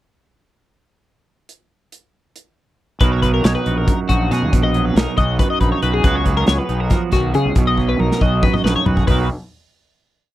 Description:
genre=math rock and midwest emo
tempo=277 BPM (eighths)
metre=7/8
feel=straight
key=B major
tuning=A4 = 440 Hz
part: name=modern studio drum kit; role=drums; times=1.5-9.2 s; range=hi-hat, kick drum, snare drum, toms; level=-18 LUFS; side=equal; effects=none
part: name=twangy electric guitar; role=accompaniment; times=3.0-9.3 s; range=F#2 to A#4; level=-21 LUFS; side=right 6 dB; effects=none
part: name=twelve-string electric guitar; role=arpeggios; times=3.0-9.3 s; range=F#4 to D#5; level=-21 LUFS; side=left 5 dB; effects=analog chorus
part: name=fuzz fingered electric bass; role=bass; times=3.0-9.3 s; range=A#1 to C#3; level=-19 LUFS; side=equal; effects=overdrive
room=little or no reverb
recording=dry, close 1970s-style studio recording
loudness=-14 LUFS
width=side -14 dB against mid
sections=1.5-3.0 pickup bar; 3.0-9.1 A section; 9.1-10.3 final chord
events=drum fill 7.8-9.1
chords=1.5 N.C.; 3.0 Bmaj7; 6.0 C#7sus4; 7.6 Bmaj7

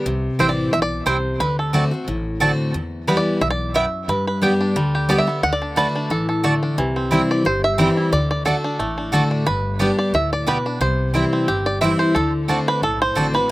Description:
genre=bluegrass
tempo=179 BPM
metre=4/4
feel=swing 54% on 8ths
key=unclear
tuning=A4 = 437 Hz
part: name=bluegrass banjo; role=melody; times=0.0-13.5 s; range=E3 to F#5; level=-22 LUFS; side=right 1 dB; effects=slapback echo
part: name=picked steel-string acoustic guitar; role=accompaniment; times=0.0-13.5 s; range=E2 to G4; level=-20 LUFS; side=left 1 dB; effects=none
part: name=upright bass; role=bass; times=0.1-13.4 s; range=G1 to G2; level=-27 LUFS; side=equal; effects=none
part: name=mandolin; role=stabs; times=0.4-13.3 s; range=A3 to A5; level=-22 LUFS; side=right 3 dB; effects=slapback echo
room=little or no reverb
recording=recorded outdoors, with no room sound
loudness=-17 LUFS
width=side -17 dB against mid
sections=0.0-13.5 A section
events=five-string banjo solo 0.0-13.5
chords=0.1 C; 1.4 D7; 2.7 Em; 4.1 G; 5.4 D; 6.8 C; 8.1 D; 9.5 G; 10.8 C; 12.2 D7

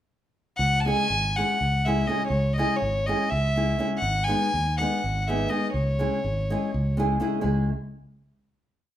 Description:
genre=balkan folk, Balkan wedding band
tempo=246 BPM (eighths)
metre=7/8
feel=straight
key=C# minor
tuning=A4 = 437 Hz
part: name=warm violin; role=melody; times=0.6-7.0 s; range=C#5 to A5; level=-26 LUFS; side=left 1 dB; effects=none
part: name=fingered electric bass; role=bass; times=0.6-7.7 s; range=G#1 to D#2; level=-27 LUFS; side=equal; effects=none
part: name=nylon-string guitar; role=accompaniment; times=0.9-7.7 s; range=G#3 to G#4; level=-27 LUFS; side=equal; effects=none
room=moderate large studio reverb, RT60 0.9 s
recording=band playing live in one room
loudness=-22 LUFS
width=side -11 dB against mid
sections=0.6-7.4 A section; 7.4-9.0 final chord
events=none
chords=0.6 C#m; 4.0 G#m; 5.7 C#m

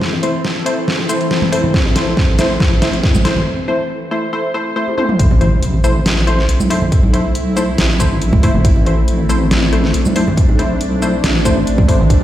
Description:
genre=deep dubstep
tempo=139 BPM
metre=4/4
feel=half-time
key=A minor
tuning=A4 = 440 Hz
part: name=bowed-like drone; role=sustained chords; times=0.0-12.2 s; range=E3 to B4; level=-21 LUFS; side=left 1 dB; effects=built-in reverb
part: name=dubstep drum kit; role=drums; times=0.0-12.2 s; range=hi-hat, shaker, snare drum, toms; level=-19 LUFS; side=equal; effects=none
part: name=bongos and congas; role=percussion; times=0.1-12.2 s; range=none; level=-20 LUFS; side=right 2 dB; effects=dub echo
part: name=filtered dub chord stab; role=stabs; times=0.2-12.0 s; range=A3 to C5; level=-20 LUFS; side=left 1 dB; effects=chorus, dub echo
part: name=electronic kick drum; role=drums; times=1.7-12.2 s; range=none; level=-14 LUFS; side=equal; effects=none
part: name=deep soft wobble bass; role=bass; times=5.2-12.2 s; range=A1 to B1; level=-16 LUFS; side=equal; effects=chorus
part: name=impact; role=sound effects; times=5.2-6.9 s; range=none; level=-20 LUFS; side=equal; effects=none
room=light reverb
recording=played on a big sound system in a bare room, stone room reverb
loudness=-12 LUFS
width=side -12 dB against mid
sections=0.0-5.2 A section; 5.2-12.2 B section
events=build-up 0.0-5.2; drum fill 0.0-3.5, 4.9-5.2; break 3.5-5.2; drop 5.2-12.2; impact 5.2-6.9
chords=0.0 Am

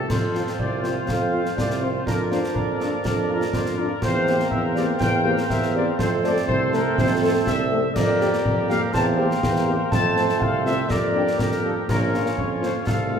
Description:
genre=military-style march for wind band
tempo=122 BPM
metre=2/4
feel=straight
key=F major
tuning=A4 = 440 Hz
part: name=dark trumpet section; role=melody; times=0.0-13.2 s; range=A4 to A5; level=-27 LUFS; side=left 1 dB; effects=none
part: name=clear woodwind section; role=second line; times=0.0-13.2 s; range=F4 to D5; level=-28 LUFS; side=left 1 dB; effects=none
part: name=warm trombone section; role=sustained chords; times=0.1-13.2 s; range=F3 to D4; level=-29 LUFS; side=right 2 dB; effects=none
part: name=clear tuba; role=bass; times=0.1-13.2 s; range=Bb1 to F2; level=-25 LUFS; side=right 3 dB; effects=none
part: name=concert snare drum, clash cymbals and concert bass drum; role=drums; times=0.1-13.1 s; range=none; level=-27 LUFS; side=left 1 dB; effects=none
part: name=warm French horn section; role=accompaniment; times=0.3-13.2 s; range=A3 to A4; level=-29 LUFS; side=left 3 dB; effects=none
room=wet recital hall reverb, RT60 1.6 s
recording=minimal, uncompressed stereo recording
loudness=-19 LUFS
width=side -7 dB against mid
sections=0.1-13.2 A section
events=none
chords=0.1 F; 2.1 Bb/F; 4.0 C7/E; 6.0 F; 8.0 Gm7/F; 8.9 C7/E; 9.9 F; 10.9 Gm7/F; 11.9 Bbm

